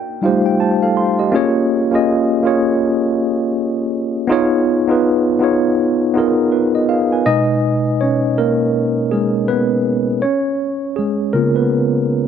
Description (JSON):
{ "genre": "R&B", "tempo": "81 BPM", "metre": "4/4", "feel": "swing 61% on 16ths", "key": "unclear", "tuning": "A4 = 438 Hz", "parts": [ { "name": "tine electric piano", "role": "solo", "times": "0.0-12.3 s", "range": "B2 to C6", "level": "-14 LUFS", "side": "equal", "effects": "medium stereo tremolo" } ], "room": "light reverb", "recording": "none", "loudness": "-14 LUFS", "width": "side -8 dB against mid", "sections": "0.0-7.2 A section; 7.2-12.3 B section", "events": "tine electric piano fill 0.0-1.3; tine electric piano solo 7.2-12.3", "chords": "0.0 F7; 1.3 A#m7; 4.3 C#7; 7.2 B69; 10.2 C#7" }